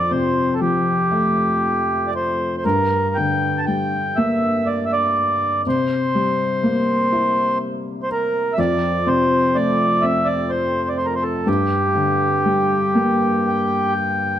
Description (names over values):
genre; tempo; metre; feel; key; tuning
celtic folk, Celtic slow air; 61 BPM; 3/4; rubato; G dorian; A4 = 440 Hz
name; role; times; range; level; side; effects
mellow accordion; melody; 0.0-14.4 s; G4 to A5; -19 LUFS; right 1 dB; none
felt-muted upright piano; accompaniment; 0.0-14.4 s; F2 to E4; -21 LUFS; left 2 dB; none
room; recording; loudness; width
moderate recital hall reverb, RT60 1.5 s; dark, warm production; -17 LUFS; side -10 dB against mid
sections
0.0-14.4 A section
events
none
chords
0.0 F; 2.6 Gm; 5.7 C7; 8.6 F; 11.5 Gm